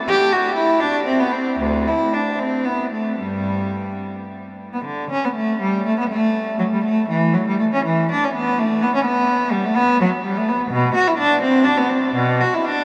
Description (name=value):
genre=classical, baroque-style suite movement for unaccompanied cello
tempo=70-88 BPM (dotted quarters)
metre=6/8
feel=rubato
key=G major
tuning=A4 = 440 Hz
part: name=warm cello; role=solo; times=0.1-12.8 s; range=D2 to G4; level=-19 LUFS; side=equal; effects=none
room=wet huge ambient reverb, RT60 7.1 s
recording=in a vast, echoing space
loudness=-19 LUFS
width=mono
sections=0.0-4.9 A section; 4.9-12.8 A section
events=none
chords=none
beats=| 0.10 0.81 | 1.61 2.39 | 3.19 4.02 | 4.85 5.61 | 6.35 7.08 | 7.85 8.58 | 9.29 10.01 | 10.72 11.41 | 12.15